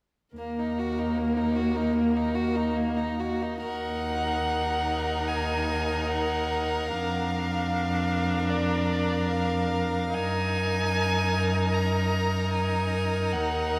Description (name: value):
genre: classical, slow romantic movement for string quartet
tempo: 74 BPM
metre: 4/4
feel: rubato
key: Eb minor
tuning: A4 = 443 Hz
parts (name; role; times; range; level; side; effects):
- rich violin; melody; 0.4-13.8 s; Bb4 to Bb5; -34 LUFS; equal; none
- clear violin; second line; 0.4-13.8 s; Bb3 to Bb4; -33 LUFS; equal; none
- clear viola; accompaniment; 0.4-13.8 s; Bb3 to Eb4; -33 LUFS; equal; none
- clear cello; bass; 0.4-13.8 s; Eb2 to Gb2; -32 LUFS; equal; none
room: wet cathedral reverb, RT60 5.3 s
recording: in a vast, echoing space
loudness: -27 LUFS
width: mono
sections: 0.4-3.6 A section; 3.6-13.8 B section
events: none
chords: 0.4 Ebm; 6.9 Bb/F; 10.1 Ebm/Gb